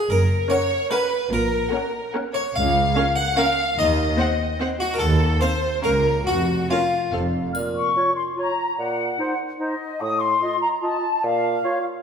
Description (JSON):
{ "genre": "cinematic, playful, whimsical film cue", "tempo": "147 BPM", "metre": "3/4", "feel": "straight", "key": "Bb minor", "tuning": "A4 = 441 Hz", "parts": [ { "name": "harpsichord", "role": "melody", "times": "0.0-7.1 s", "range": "F4 to Gb5", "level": "-24 LUFS", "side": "left 1 dB", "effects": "none" }, { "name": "clear chamber violin section", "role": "second line", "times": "0.1-7.1 s", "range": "F4 to Gb5", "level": "-24 LUFS", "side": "left 1 dB", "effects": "none" }, { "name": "rich chamber double bass section", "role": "bass", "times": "0.1-7.5 s", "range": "F1 to Eb2", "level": "-26 LUFS", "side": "right 2 dB", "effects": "none" }, { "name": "rich studio cello section", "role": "bass", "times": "0.1-7.5 s", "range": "Db2 to Bb2", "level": "-26 LUFS", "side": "right 1 dB", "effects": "none" }, { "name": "rich chamber violin section", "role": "melody", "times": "0.5-7.2 s", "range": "F5 to Gb5", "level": "-34 LUFS", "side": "left 3 dB", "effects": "none" }, { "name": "rich studio viola section", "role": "accompaniment", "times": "0.5-7.2 s", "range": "C4 to C5", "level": "-28 LUFS", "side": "right 1 dB", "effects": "none" }, { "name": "flute section", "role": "second line", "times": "7.1-11.8 s", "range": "Eb5 to F6", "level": "-23 LUFS", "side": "left 3 dB", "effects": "none" }, { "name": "triangle", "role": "percussion", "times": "7.5-8.3 s", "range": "none", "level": "-40 LUFS", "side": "left 4 dB", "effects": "none" }, { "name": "warm bassoon", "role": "accompaniment", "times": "7.6-11.6 s", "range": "A2 to Bb2", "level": "-28 LUFS", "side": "right 3 dB", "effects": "none" }, { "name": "mellow oboe", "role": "second line", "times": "8.0-11.8 s", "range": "C5 to Eb5", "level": "-29 LUFS", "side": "right 1 dB", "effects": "none" }, { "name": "warm clarinet", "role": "second line", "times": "8.0-11.8 s", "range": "Eb4 to F4", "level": "-30 LUFS", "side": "right 2 dB", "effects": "none" } ], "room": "wet scoring stage reverb, RT60 1.5 s", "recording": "minimal, uncompressed stereo recording", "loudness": "-19 LUFS", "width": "side -7 dB against mid", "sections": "0.0-7.5 A section; 7.5-12.0 B section", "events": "none", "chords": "0.1 Gb; 1.3 Gb/Bb; 2.5 Bbm/Db; 3.8 Cdim/Eb; 5.8 Bbm/Db; 6.3 N.C.; 7.1 F; 7.5 Bbm; 10.0 F7/A; 11.2 Bb5" }